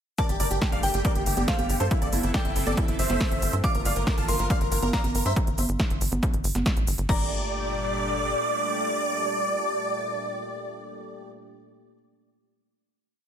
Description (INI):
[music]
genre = uplifting trance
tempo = 139 BPM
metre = 4/4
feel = straight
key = G dorian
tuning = A4 = 440 Hz
[part]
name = big supersaw lead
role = melody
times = 0.2-11.3 s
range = E4 to A5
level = -29 LUFS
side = equal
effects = phaser, sidechain pumping, ping-pong delay
[part]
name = bright concert grand piano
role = second line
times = 0.2-11.9 s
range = E4 to A5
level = -39 LUFS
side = left 1 dB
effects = sidechain pumping, ping-pong delay
[part]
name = glassy synth bell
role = second line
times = 0.2-11.9 s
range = F5 to D6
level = -34 LUFS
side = left 2 dB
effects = chorus, tremolo, ping-pong delay
[part]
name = filtered supersaw swell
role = sustained chords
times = 0.2-11.3 s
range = Bb2 to A4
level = -34 LUFS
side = right 1 dB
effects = sidechain pumping
[part]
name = big-room dance drum kit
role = drums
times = 0.2-7.2 s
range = congas, crash cymbal, hi-hat, shaker, snare drum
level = -30 LUFS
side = right 2 dB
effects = overdrive, sidechain pumping on hats, sidechain pumping on perc, sidechain pumping on cymbals
[part]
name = electronic kick drum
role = drums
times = 0.2-7.2 s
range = none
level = -26 LUFS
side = equal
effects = overdrive
[part]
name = tight sequencer bass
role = bass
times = 0.3-8.3 s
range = G1 to G2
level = -28 LUFS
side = equal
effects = sidechain pumping
[sound]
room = light reverb, digital ambience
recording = none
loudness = -23 LUFS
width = side -9 dB against mid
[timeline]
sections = 0.2-7.1 drop; 7.1-10.5 final chord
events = drop 0.2-7.1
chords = 0.2 Gmadd9; 1.9 Am/G; 3.6 Bbmaj7/G; 5.4 N.C.; 7.1 Gmadd9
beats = | 0.18 0.62 1.05 1.48 | 1.91 2.34 2.77 3.21 | 3.64 4.07 4.50 4.93 | 5.36 5.80 6.23 6.66 | 7.09 7.52 7.95 8.39 | 8.82 9.25 9.68 10.11